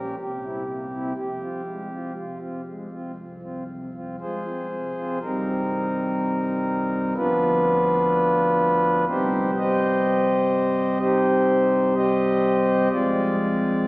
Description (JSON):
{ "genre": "classical, chorale-style piece for pipe organ", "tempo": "62 BPM", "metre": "4/4", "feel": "rubato", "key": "F minor, C minor from 5.2 s", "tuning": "A4 = 436 Hz", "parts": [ { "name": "pipe organ, principal", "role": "solo", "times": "0.0-13.9 s", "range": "C1 to Eb5", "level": "-20 LUFS", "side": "equal", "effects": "none" } ], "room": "wet church reverb, RT60 3.5 s", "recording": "heard from further back in the room, small speaker sound", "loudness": "-20 LUFS", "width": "side -23 dB against mid", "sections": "0.0-5.2 A section; 5.2-13.9 B section", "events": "none", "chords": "0.2 C7; 1.1 Fm; 5.2 Cm; 7.2 Bdim/D; 9.1 Cm; 12.9 Fm" }